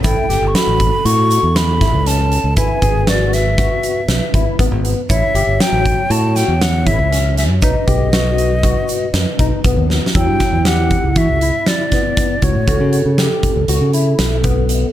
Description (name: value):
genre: progressive instrumental, band music in an uneven meter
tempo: 119 BPM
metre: 5/4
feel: straight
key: E dorian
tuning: A4 = 440 Hz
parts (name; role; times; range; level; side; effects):
- breathy mellow silver concert flute; melody; 0.0-13.2 s; C#5 to C#6; -19 LUFS; left 1 dB; ping-pong delay
- vibraphone with medium hard mallets; second line; 0.0-14.9 s; E4 to C#5; -23 LUFS; right 4 dB; none
- barky tine electric piano; arpeggios; 0.0-14.9 s; F#3 to G#4; -22 LUFS; left 8 dB; overdrive, ensemble chorus
- modern bright fingered electric bass; bass; 0.0-14.8 s; G1 to E3; -16 LUFS; equal; none
- huge arena drum kit; drums; 0.0-14.8 s; hi-hat, kick drum, snare drum; -18 LUFS; equal; none
- tube shaker; percussion; 0.0-9.8 s; none; -33 LUFS; right 9 dB; none
room: light reverb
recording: none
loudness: -12 LUFS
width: side -12 dB against mid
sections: 0.0-10.1 A section; 10.1-14.9 B section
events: drum fill 9.9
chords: 0.0 A7; 2.6 E/G#; 5.1 A7; 7.6 B; 10.1 Emadd9; 12.7 C#m7b5